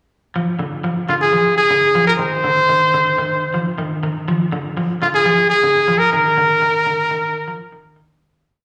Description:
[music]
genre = afrobeat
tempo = 122 BPM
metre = 4/4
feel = straight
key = Bb mixolydian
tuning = A4 = 437 Hz
[part]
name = electric guitar at the edge of break-up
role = arpeggios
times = 0.4-8.2 s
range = D3 to F3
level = -24 LUFS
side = equal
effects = spring reverb, slapback echo
[part]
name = bright trumpet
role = melody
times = 1.1-7.9 s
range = F4 to C5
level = -16 LUFS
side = equal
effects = slapback echo
[sound]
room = light reverb, small room ambience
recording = live gig heard through the venue's PA, recital hall reverb, small room reverb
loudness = -16 LUFS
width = mono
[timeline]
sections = 0.4-8.2 groove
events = fade-out 6.2-8.2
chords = 0.4 Bbadd11/D

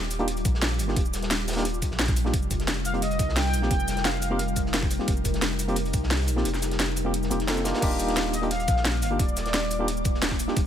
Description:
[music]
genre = liquid drum and bass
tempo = 175 BPM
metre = 4/4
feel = straight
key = Eb major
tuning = A4 = 444 Hz
[part]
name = ethereal airy pad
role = sustained chords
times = 0.0-10.7 s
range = G3 to D6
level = -32 LUFS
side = left 1 dB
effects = ensemble chorus, built-in reverb, sidechain pumping
[part]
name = sub bass with octave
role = bass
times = 0.0-10.7 s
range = Eb1 to C2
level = -29 LUFS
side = equal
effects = none
[part]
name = crunchy breakbeat drum kit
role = drums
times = 0.1-10.7 s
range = hi-hat, snare drum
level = -36 LUFS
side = equal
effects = high-pass filter on hats, high-pass filter on snare, high-pass filter on room
[part]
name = drum and bass drum kit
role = drums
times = 0.1-10.6 s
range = crash cymbal, hi-hat, shaker, snare drum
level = -29 LUFS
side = equal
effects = overdrive
[part]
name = tine electric piano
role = accompaniment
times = 0.2-10.6 s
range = Bb3 to A4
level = -31 LUFS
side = equal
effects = medium tremolo, ping-pong delay
[part]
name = electronic kick drum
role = drums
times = 0.5-10.6 s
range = none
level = -26 LUFS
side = equal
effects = overdrive
[part]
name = warm velvety synth lead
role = melody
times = 2.9-4.7, 8.3-10.2 s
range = D5 to G5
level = -32 LUFS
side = left 1 dB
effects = chorus, dub echo
[sound]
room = light reverb, digital ambience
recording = none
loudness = -23 LUFS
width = side -10 dB against mid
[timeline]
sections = 0.0-7.8 A section; 7.8-10.7 A section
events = drop 0.0-7.8, 7.8-10.7; kick drops out 6.5-7.8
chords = 0.0 Ebmaj9; 2.3 F9sus4; 7.8 Ebmaj9

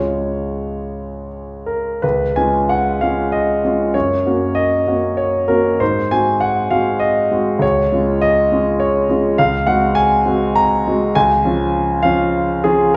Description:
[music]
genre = classical, romantic character piece for solo piano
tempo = 76-105 BPM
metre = 3/4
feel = rubato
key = Db major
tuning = A4 = 440 Hz
[part]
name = warm concert grand piano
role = solo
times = 0.0-13.0 s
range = Db2 to Bb5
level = -17 LUFS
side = equal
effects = none
[sound]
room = wet recital hall reverb, RT60 1.3 s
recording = recorded in a church or concert hall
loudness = -17 LUFS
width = mono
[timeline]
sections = 0.0-2.0 A section; 2.0-13.0 B section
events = none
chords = 0.0 Db; 3.9 Gb; 5.8 Ab7; 7.6 Db; 9.4 Ab7/Db; 11.2 Db

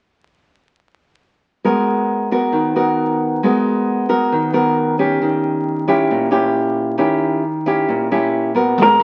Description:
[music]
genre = bossa nova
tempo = 135 BPM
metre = 4/4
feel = straight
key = G# minor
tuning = A4 = 444 Hz
[part]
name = nylon-string guitar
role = accompaniment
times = 1.6-9.0 s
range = A#2 to A#4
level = -17 LUFS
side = equal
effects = none
[part]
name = archtop guitar, miked and amplified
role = melody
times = 8.8-9.0 s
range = A#4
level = -12 LUFS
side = equal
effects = none
[part]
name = upright bass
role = bass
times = 8.8-9.0 s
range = G#1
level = -32 LUFS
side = equal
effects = none
[part]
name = compact cocktail drum kit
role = drums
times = 8.8-9.0 s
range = hi-hat, kick drum, rim click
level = -34 LUFS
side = equal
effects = none
[sound]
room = moderate large studio reverb, RT60 1.0 s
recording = very old 78 rpm record, vinyl crackle, nothing above 10.9 kHz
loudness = -17 LUFS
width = mono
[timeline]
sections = 1.7-8.8 A section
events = none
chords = 1.7 G#m9; 5.2 D#7b9

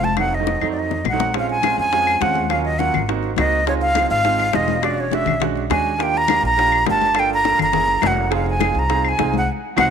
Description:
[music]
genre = Afro-Cuban jazz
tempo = 206 BPM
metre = 4/4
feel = straight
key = Bb minor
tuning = A4 = 441 Hz
[part]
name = breathy silver concert flute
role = melody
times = 0.0-9.9 s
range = Db5 to Bb5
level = -19 LUFS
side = equal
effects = none
[part]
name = clear baby grand piano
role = accompaniment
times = 0.0-9.9 s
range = Gb3 to A4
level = -24 LUFS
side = right 11 dB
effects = none
[part]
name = upright bass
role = bass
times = 0.0-9.9 s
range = E1 to F2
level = -25 LUFS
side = equal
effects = none
[part]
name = congas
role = percussion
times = 0.0-9.8 s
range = none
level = -28 LUFS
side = left 15 dB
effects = none
[part]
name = bongos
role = percussion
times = 0.2-9.8 s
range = none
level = -27 LUFS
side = left 13 dB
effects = none
[part]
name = claves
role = percussion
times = 0.2-9.8 s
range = none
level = -25 LUFS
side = left 16 dB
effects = none
[sound]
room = moderate plate reverb, RT60 2.7 s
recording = 1960s-style stereo with parts hard left and right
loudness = -16 LUFS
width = side -7 dB against mid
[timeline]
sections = 0.0-1.3 A section; 1.3-9.9 B section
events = drum fill 0.5-1.3; band accent 9.5-9.9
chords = 0.2 F7b9; 1.3 Bbm9; 2.5 Ebm7; 3.1 Ab9; 3.7 Dbmaj7; 4.8 E13; 6.0 Ebmaj9; 7.2 Gm7; 7.7 Gb9; 8.3 Fm7

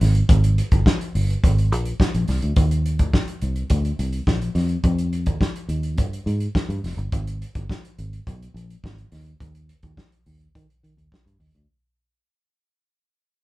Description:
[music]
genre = disco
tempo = 105 BPM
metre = 4/4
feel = straight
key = unclear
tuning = A4 = 440 Hz
[part]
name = fingered electric bass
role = bass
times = 0.0-11.6 s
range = F1 to Eb3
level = -21 LUFS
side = equal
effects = none
[part]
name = warm soul drum kit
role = drums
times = 0.0-11.7 s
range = hi-hat, kick drum, snare drum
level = -21 LUFS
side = equal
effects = none
[sound]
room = moderate studio ambience, RT60 0.5 s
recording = band playing live in one room, faint mains hum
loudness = -19 LUFS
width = side -18 dB against mid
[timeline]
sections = 0.0-11.7 A section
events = fade-out 0.0-11.7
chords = none

